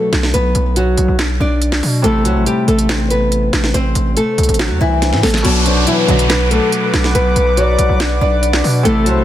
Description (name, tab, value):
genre	hip hop, trap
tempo	141 BPM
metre	4/4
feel	half-time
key	B phrygian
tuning	A4 = 440 Hz
part	nylon-string guitar	melody	0.0-9.2 s	E3 to D5	-18 LUFS	equal	ping-pong delay
part	Celtic harp	accompaniment	0.0-9.2 s	B2 to E4	-20 LUFS	left 2 dB	none
part	distorted 808-style bass	bass	0.1-9.2 s	A1 to B2	-16 LUFS	equal	distortion
part	trap drum kit	drums	0.1-9.2 s	crash cymbal, handclaps, hi-hat, snare drum	-20 LUFS	equal	none
part	swell and downlifter	sound effects	4.1-8.8 s	none	-24 LUFS	right 1 dB	none
part	warm analog pad	sustained chords	5.4-9.2 s	A4 to D6	-22 LUFS	right 1 dB	chorus
part	gliding portamento lead	second line	5.7-9.2 s	A4 to D5	-20 LUFS	left 5 dB	chorus, ping-pong delay
part	muted chamber string section	stabs	6.1-6.3 s	B2 to F#3	-19 LUFS	right 5 dB	none
room	digital ambience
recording	dense, heavily limited modern master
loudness	-12 LUFS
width	side -12 dB against mid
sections	0.0-5.4 A section; 5.4-9.2 B section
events	drum fill 5.0-5.4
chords	0.0 Bm; 2.0 Am; 5.4 Bm